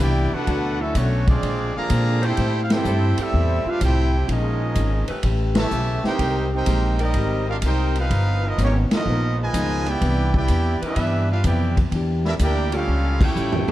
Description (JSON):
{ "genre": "jazz, big band swing", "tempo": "126 BPM", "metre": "4/4", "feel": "swing 69% on 8ths", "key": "unclear", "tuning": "A4 = 439 Hz", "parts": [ { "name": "bright trumpet section", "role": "melody", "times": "0.0-13.7 s", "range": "A3 to Bb5", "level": "-27 LUFS", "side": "right 1 dB", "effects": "none" }, { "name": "bright trombone section", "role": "second line", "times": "0.0-13.7 s", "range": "C#3 to G4", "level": "-27 LUFS", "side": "right 2 dB", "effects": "none" }, { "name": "picked plugged-in steel-string acoustic guitar", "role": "accompaniment", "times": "0.0-13.7 s", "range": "G2 to B4", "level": "-29 LUFS", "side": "left 3 dB", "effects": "none" }, { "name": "upright bass", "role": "bass", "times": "0.0-13.7 s", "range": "G1 to Bb2", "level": "-21 LUFS", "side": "equal", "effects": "none" }, { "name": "mellow saxophone section", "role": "sustained chords", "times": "0.5-7.6, 10.8-13.3 s", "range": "C3 to C5", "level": "-34 LUFS", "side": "left 2 dB", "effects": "none" }, { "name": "swinging big-band drum kit", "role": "drums", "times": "0.5-13.7 s", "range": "crash cymbal, hi-hat, kick drum, ride cymbal, snare drum, toms", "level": "-26 LUFS", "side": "equal", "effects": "none" } ], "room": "light reverb", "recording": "dark, warm production", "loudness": "-18 LUFS", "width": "side -14 dB against mid", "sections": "0.0-13.7 A section", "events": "band accent 2.6, 5.5, 8.8, 13.1; drum fill 12.9-13.7", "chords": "0.5 Bm7; 1.4 Bb9; 2.4 Am7; 4.3 Bbm7; 5.2 A9; 6.2 Abmaj9; 8.1 G7alt; 10.0 Cmaj9; 11.9 Em7b5; 12.9 A7b13" }